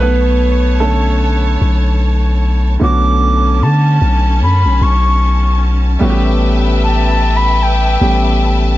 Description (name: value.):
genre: contemporary R&B.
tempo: 75 BPM.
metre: 4/4.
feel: swing 58% on 16ths.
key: unclear.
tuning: A4 = 440 Hz.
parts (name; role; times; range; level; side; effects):
warm concert grand piano; accompaniment; 0.0-8.8 s; D3 to B4; -18 LUFS; right 2 dB; none.
bright studio string section; sustained chords; 0.0-8.8 s; C#4 to A5; -22 LUFS; equal; none.
long sustained 808-style bass; bass; 0.0-8.8 s; A1 to D3; -12 LUFS; equal; none.
mellow silver concert flute; melody; 2.8-8.8 s; G5 to D6; -17 LUFS; equal; tape echo.
room: little or no reverb.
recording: nothing above 7.7 kHz.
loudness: -10 LUFS.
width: side -15 dB against mid.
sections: 0.0-2.8 A section; 2.8-8.8 B section.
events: grand piano solo 0.0-2.8.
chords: 0.0 Bm9; 6.0 A9.